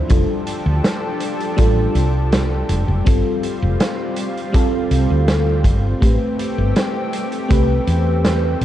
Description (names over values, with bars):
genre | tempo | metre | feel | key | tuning
vaporwave | 81 BPM | 4/4 | straight | unclear | A4 = 440 Hz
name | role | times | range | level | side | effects
FM electric piano with soft pad layer | accompaniment | 0.0-8.6 s | F3 to C5 | -22 LUFS | equal | tremolo, wide subtle chorus, tape echo
lush unison pad | sustained chords | 0.0-8.6 s | F3 to A4 | -26 LUFS | equal | chorus, vintage 12-bit sampler grit
woody fretless electric bass | bass | 0.1-8.6 s | F1 to E2 | -17 LUFS | equal | none
kick drum | drums | 0.1-7.7 s | none | -18 LUFS | equal | vintage 12-bit sampler grit
raw garage drum kit | drums | 0.1-8.6 s | hi-hat, snare drum | -24 LUFS | right 1 dB | vintage 12-bit sampler grit
room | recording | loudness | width
studio reverb | dark, warm production | -15 LUFS | side -12 dB against mid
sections
0.0-8.6 A section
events
none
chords
0.1 F69; 6.0 Am9